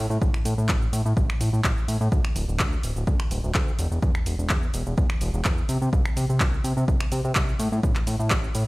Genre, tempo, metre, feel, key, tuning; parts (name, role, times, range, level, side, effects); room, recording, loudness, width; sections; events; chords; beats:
filtered disco house; 126 BPM; 4/4; straight; A4 = 441 Hz
fat analog bass; bass; 0.0-8.6 s; D1 to C3; -25 LUFS; equal; sidechain pumping
punchy analog drum machine; drums; 0.1-8.7 s; cabasa, finger snaps, handclaps, hi-hat; -30 LUFS; equal; overdrive, sidechain pumping on perc, sidechain pumping on hats
electronic kick drum; drums; 0.2-8.4 s; -24 LUFS; equal; overdrive
little or no reverb; played on a big sound system in a bare room, stone room reverb; -21 LUFS; side -22 dB against mid
0.0-8.7 A section
| 0.21 0.69 1.17 1.64 | 2.12 2.60 3.07 3.55 | 4.02 4.50 4.98 5.45 | 5.93 6.41 6.88 7.36 | 7.83 8.31